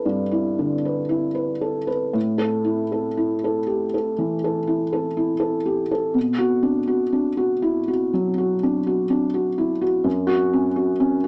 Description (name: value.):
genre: neoclassical minimalist piano.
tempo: 57-64 BPM.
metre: 4/4.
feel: rubato.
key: unclear.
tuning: A4 = 440 Hz.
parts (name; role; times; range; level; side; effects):
felt-muted upright piano; solo; 0.0-11.3 s; F#2 to B4; -19 LUFS; equal; cassette tape.
room: light reverb.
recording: home recording on cassette, small speaker sound.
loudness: -19 LUFS.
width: side -31 dB against mid.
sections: 0.0-11.3 A section.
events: none.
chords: 0.0 Em7/G; 2.2 A5; 6.2 Bm; 10.1 F#5.